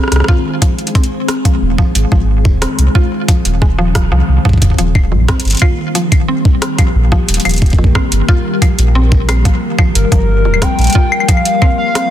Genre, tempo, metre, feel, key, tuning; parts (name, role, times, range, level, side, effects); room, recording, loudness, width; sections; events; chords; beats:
IDM; 90 BPM; 4/4; straight; A4 = 441 Hz
glassy FM pad; sustained chords; 0.0-12.1 s; Eb3 to C5; -19 LUFS; left 2 dB; ensemble chorus, built-in reverb
mallet-like synth pluck; arpeggios; 0.0-12.1 s; F2 to F4; -20 LUFS; right 2 dB; chorus, digital delay
booming analog drum machine; drums; 0.0-12.1 s; claves, hi-hat, rim click; -18 LUFS; left 1 dB
warm sub bass; bass; 0.1-10.9 s; D1 to C2; -13 LUFS; equal
electronic kick drum; drums; 0.3-11.8 s; -11 LUFS; equal
warbly nostalgic lead; melody; 10.0-12.1 s; Bb4 to G5; -16 LUFS; left 1 dB; chorus, cassette tape, ping-pong delay
little or no reverb; dense, heavily limited modern master; -10 LUFS; side -11 dB against mid
0.0-12.1 A section
0.0 Ab; 4.6 Eb; 10.0 Gm7
0.62 1.28 | 1.95 2.62 3.29 3.95 | 4.62 5.29 5.95 6.62 | 7.29 7.95 8.62 9.29 | 9.95 10.62 11.29 11.95